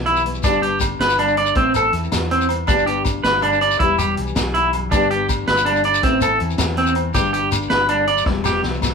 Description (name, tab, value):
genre	highlife guitar band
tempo	107 BPM (dotted quarters)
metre	12/8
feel	straight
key	G major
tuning	A4 = 442 Hz
part	nylon-string guitar	accompaniment	0.0-8.9 s	E2 to G4	-26 LUFS	left 8 dB	none
part	hollow-body short-scale fingered electric bass	bass	0.0-8.9 s	E1 to E2	-26 LUFS	equal	none
part	electric guitar at the edge of break-up	arpeggios	0.1-8.6 s	C4 to D5	-17 LUFS	right 2 dB	none
part	vintage drum kit	drums	0.1-8.9 s	hi-hat, kick drum, snare drum	-24 LUFS	equal	none
part	shekere	percussion	0.2-8.9 s	none	-26 LUFS	left 4 dB	none
part	agogo bells	percussion	0.4-8.9 s	none	-28 LUFS	equal	none
room	moderate studio reverb, RT60 0.8 s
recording	band playing live in one room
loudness	-16 LUFS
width	side -5 dB against mid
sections	0.0-8.9 A section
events	drum fill 8.3-8.9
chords	0.4 G; 1.6 Amadd9; 2.7 G; 3.8 Em; 4.9 G; 6.0 Amadd9; 7.1 G; 8.3 Em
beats	| 0.44 1.00 1.56 2.12 | 2.68 3.24 3.80 4.36 | 4.92 5.47 6.03 6.59 | 7.15 7.71 8.27 8.82